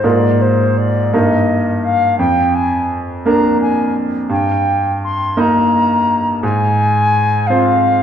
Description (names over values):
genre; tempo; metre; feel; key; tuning
classical, romantic duo for flute and grand piano; 57 BPM (dotted quarters); 6/8; rubato; Eb major; A4 = 444 Hz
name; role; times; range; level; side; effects
silver concert flute; melody; 0.0-8.0 s; C5 to C6; -16 LUFS; left 2 dB; none
bright grand piano; accompaniment; 0.0-8.0 s; F2 to Eb5; -14 LUFS; right 2 dB; none
room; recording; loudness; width
wet scoring stage reverb, RT60 1.6 s; dark, warm production; -12 LUFS; side -8 dB against mid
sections
0.0-8.0 A section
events
none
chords
0.0 Bb5/Ab; 1.1 Eb/G; 2.2 Bb/F; 4.3 Eb/G; 6.4 Fm/Ab